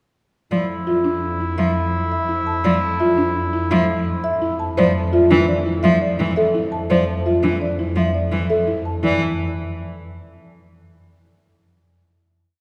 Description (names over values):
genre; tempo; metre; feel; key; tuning
classical, minimalist pattern music; 169 BPM; 6/4; straight; F major; A4 = 438 Hz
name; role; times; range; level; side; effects
marimba with soft mallets; melody; 0.5-9.2 s; D5 to A5; -28 LUFS; equal; none
warm oboe; second line; 0.5-4.6 s; E4; -27 LUFS; equal; none
clear cello; accompaniment; 0.5-9.2 s; E3 to F3; -24 LUFS; equal; none
rich symphonic double bass section; bass; 0.5-9.2 s; F2; -28 LUFS; equal; none
buzzing marimba with soft mallets; arpeggios; 0.9-9.2 s; D4 to C5; -23 LUFS; equal; none
room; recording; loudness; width
wet church reverb, RT60 3.1 s; recorded in a church or concert hall; -19 LUFS; mono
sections
0.5-9.0 A section; 9.0-11.2 final chord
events
none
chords
0.5 Fmaj7(no3); 9.0 Dmadd9/F (rootless)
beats
| 0.52 0.87 1.23 1.58 1.94 2.29 | 2.65 3.00 3.36 3.71 4.07 4.42 | 4.78 5.13 5.49 5.84 6.20 6.55 | 6.91 7.26 7.62 7.97 8.33 8.68 | 9.04